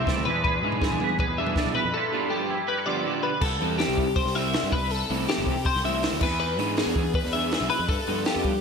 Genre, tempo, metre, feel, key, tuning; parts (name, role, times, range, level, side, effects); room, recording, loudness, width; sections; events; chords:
math rock and midwest emo; 161 BPM; 4/4; straight; C major; A4 = 440 Hz
twangy electric guitar; accompaniment; 0.0-4.9 s; G2 to D5; -31 LUFS; right 8 dB; analog chorus
twelve-string electric guitar; arpeggios; 0.0-8.6 s; G4 to E5; -27 LUFS; left 4 dB; analog chorus, ping-pong delay
crunchy overdriven guitar; riff; 0.0-8.5 s; C3 to G#4; -30 LUFS; right 2 dB; wide subtle chorus
fuzz picked electric bass; bass; 0.0-8.6 s; G1 to G3; -30 LUFS; equal; overdrive
compact cocktail drum kit; drums; 0.1-8.5 s; crash cymbal, hi-hat, kick drum, snare drum, toms; -28 LUFS; right 1 dB
wet lush hall reverb, RT60 1.7 s, studio reverb; dreamy mix soaked in reverb; -22 LUFS; side -6 dB against mid
0.0-3.4 A section; 3.4-8.6 B section
0.3 E7; 1.9 G13; 3.4 C; 4.7 Am9; 6.2 E7; 7.9 G9